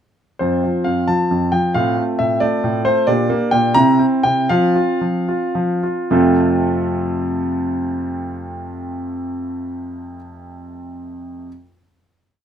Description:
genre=classical-period piano sonatina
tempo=71-92 BPM (dotted quarters)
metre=6/8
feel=rubato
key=F major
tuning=A4 = 444 Hz
part: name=clear concert grand piano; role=solo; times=0.4-11.5 s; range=F2 to Bb5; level=-16 LUFS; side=equal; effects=none
room=little or no reverb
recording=close, detailed microphones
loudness=-15 LUFS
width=side -8 dB against mid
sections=0.4-6.1 A section; 6.1-9.3 final chord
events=slowing down 2.4-6.1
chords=0.4 F; 1.7 F/A; 3.1 Gm/Bb; 3.8 C7; 4.5 F5; 6.1 F

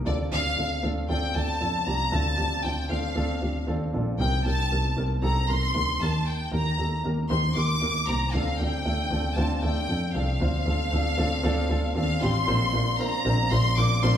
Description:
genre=piano-driven pop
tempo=116 BPM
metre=4/4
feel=straight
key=unclear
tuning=A4 = 440 Hz
part: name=dark upright piano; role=accompaniment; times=0.0-14.2 s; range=Bb2 to C5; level=-30 LUFS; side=right 1 dB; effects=none
part: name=warm studio violin section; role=melody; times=0.1-14.1 s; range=D5 to D6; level=-28 LUFS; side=left 1 dB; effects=none
part: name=rich double bass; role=bass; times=0.1-14.2 s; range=A1 to F2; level=-26 LUFS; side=equal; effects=none
room=wet large studio reverb, RT60 1.3 s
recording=band playing live in one room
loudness=-23 LUFS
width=side -10 dB against mid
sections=0.0-12.5 A section; 12.5-14.2 B section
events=none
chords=0.1 Dm7; 4.2 Cm7; 6.0 Eb; 8.3 Dm7; 12.5 Bbadd9

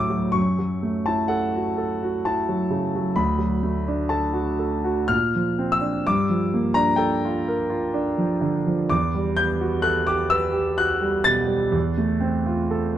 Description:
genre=classical, impressionist solo piano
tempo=63 BPM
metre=3/4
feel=uneven beats, rubato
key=unclear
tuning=A4 = 440 Hz
part: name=clear concert grand piano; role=solo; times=0.0-13.0 s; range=D2 to A6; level=-20 LUFS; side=equal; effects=none
room=light reverb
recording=dark, warm production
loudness=-20 LUFS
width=side -11 dB against mid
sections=0.0-13.0 A section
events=none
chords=0.4 F#m7; 3.2 D6; 5.1 Bbadd9; 6.1 Gm9; 8.9 Emadd9; 11.8 Fmaj7/E

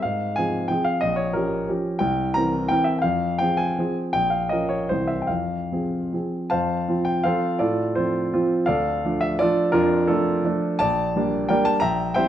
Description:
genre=classical, romantic triple-time dance for piano with dotted rhythms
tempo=139-188 BPM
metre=3/4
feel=rubato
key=F minor, F major from 6.5 s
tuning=A4 = 440 Hz
part: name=warm baby grand piano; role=solo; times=0.0-12.3 s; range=Bb1 to Bb5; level=-20 LUFS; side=equal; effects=none
room=moderate recital hall reverb, RT60 1.4 s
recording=close, detailed microphones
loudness=-20 LUFS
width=side -11 dB against mid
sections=0.0-6.5 A section; 6.5-12.3 B section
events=none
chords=0.0 Fm/Ab; 1.0 Gm7b5/Bb; 2.0 C7; 3.0 Fm; 4.1 Bbm; 4.9 C7; 5.3 Fm; 6.5 F; 7.6 F/A; 8.7 Dm; 9.7 Dm/F; 10.8 Gm/Bb

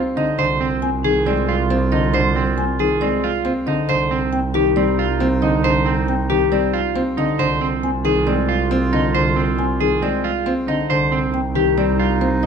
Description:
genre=classical, minimalist pattern music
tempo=137 BPM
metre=4/4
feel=straight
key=unclear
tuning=A4 = 440 Hz
part: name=marimba with soft mallets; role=melody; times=0.0-12.5 s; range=G4 to Ab5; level=-22 LUFS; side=left 8 dB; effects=none
part: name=warm clarinet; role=second line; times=0.0-12.5 s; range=Eb4 to F4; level=-28 LUFS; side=right 3 dB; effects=none
part: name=dark concert grand piano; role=accompaniment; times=0.0-12.5 s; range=D3 to C4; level=-22 LUFS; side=equal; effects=none
part: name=clear double bass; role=bass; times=0.0-12.5 s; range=C2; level=-23 LUFS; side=right 3 dB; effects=none
part: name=clean electric guitar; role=arpeggios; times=0.2-12.5 s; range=C4 to C5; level=-22 LUFS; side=right 8 dB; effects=none
room=moderate recital hall reverb, RT60 1.5 s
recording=close, detailed microphones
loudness=-16 LUFS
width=side -6 dB against mid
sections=0.0-12.5 A section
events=none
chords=0.4 Ab6/C; 3.9 Cmadd9; 7.4 Ab6/C; 10.9 Cmadd9

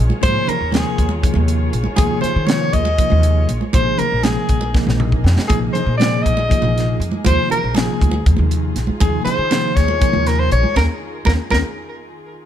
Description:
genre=electric jazz fusion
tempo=239 BPM (eighths)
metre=7/8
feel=straight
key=unclear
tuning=A4 = 443 Hz
part: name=muted studio string section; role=sustained chords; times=0.0-12.5 s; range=Eb3 to Db5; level=-30 LUFS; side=left 1 dB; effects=none
part: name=upright bass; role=bass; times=0.0-11.6 s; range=Bb1 to Eb3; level=-18 LUFS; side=equal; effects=none
part: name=congas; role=percussion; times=0.1-11.6 s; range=none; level=-25 LUFS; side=right 5 dB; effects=none
part: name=warm soprano saxophone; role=melody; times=0.2-11.6 s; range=Ab4 to Eb5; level=-20 LUFS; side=left 2 dB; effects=none
part: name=bell-like tine electric piano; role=accompaniment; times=0.2-11.6 s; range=C3 to G5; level=-23 LUFS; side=equal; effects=fast stereo tremolo
part: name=crisp fusion drum kit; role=drums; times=0.2-11.6 s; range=hi-hat, kick drum, snare drum, toms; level=-19 LUFS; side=equal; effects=none
room=light reverb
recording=none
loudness=-14 LUFS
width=side -10 dB against mid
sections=0.0-12.5 A section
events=drum fill 4.7-5.5; tine electric piano fill 4.7-5.5; band accent 10.8-12.5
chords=0.0 Eb9sus4; 3.7 Bb9sus4; 8.3 Ebsus4

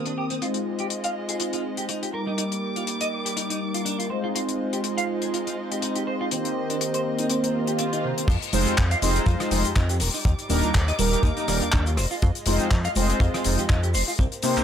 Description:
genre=nu-disco, nu disco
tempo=122 BPM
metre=4/4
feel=swing 55% on 16ths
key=F dorian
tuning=A4 = 440 Hz
part: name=mellow synth brass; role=accompaniment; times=0.0-14.6 s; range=Eb3 to C5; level=-26 LUFS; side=equal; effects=chorus, sidechain pumping, analog delay
part: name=dark studio violin section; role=sustained chords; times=0.0-14.6 s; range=G3 to Eb6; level=-34 LUFS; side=equal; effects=sidechain pumping, low-pass filter
part: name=clean electric guitar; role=riff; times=0.0-14.6 s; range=C3 to F5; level=-32 LUFS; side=right 2 dB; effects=wide subtle chorus, low-pass filter
part: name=damped 70s drum kit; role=drums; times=0.1-14.6 s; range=crash cymbal, handclaps, hi-hat, rim click, shaker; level=-28 LUFS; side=left 4 dB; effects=low-pass filter on hats, low-pass filter on cymbals, low-pass filter on snare, low-pass filter on perc, low-pass filter on room
part: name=swell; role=sound effects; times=7.5-8.3 s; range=none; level=-33 LUFS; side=right 1 dB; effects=none
part: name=chorused synth bass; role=bass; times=8.3-14.6 s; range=Eb1 to C3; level=-24 LUFS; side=equal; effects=none
part: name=kick drum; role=drums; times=8.3-14.3 s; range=none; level=-22 LUFS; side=equal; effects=none
room=light reverb, studio reverb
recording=none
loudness=-22 LUFS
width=side -9 dB against mid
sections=0.0-8.3 A section; 8.3-14.6 B section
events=filter sweep on analog polysynth 0.0-8.3; filter sweep on violin section 0.0-8.3; swell 7.5-8.3; drop 8.3-14.6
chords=0.4 Fm7; 2.1 Ebmaj7; 4.1 Fm7; 6.3 Cm7; 8.3 Fm7; 10.0 Ebmaj7; 12.0 Fm7

